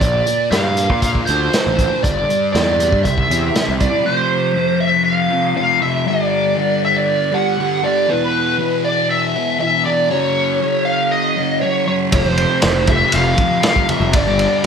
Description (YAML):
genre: psychedelic rock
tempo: 119 BPM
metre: 4/4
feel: straight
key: unclear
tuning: A4 = 440 Hz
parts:
  - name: lead guitar through a small cranked amp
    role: melody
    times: 0.0-14.7 s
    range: B4 to F#5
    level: -17 LUFS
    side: equal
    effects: wah, overdrive, slapback echo
  - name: thick fuzz guitar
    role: riff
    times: 0.0-14.7 s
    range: E2 to G4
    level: -19 LUFS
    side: equal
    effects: distortion, phaser
  - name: fuzz picked electric bass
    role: bass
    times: 0.0-3.9, 12.1-14.5 s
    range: F1 to Bb2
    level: -20 LUFS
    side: equal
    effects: overdrive
  - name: crunchy breakbeat drum kit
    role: drums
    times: 0.0-3.9, 12.1-14.7 s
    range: hi-hat, kick drum, ride cymbal, snare drum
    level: -19 LUFS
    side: equal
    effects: none
  - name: congas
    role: percussion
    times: 12.3-14.4 s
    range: none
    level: -29 LUFS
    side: right 3 dB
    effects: none
room: moderate plate reverb, RT60 1.6 s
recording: none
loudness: -14 LUFS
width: side -6 dB against mid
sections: 0.0-4.1 A section; 4.1-14.7 B section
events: none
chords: 0.0 Bb; 2.0 Gm; 3.0 C; 4.1 F5; 6.1 G5; 8.1 E5; 10.1 F#5; 12.1 F5; 14.1 G5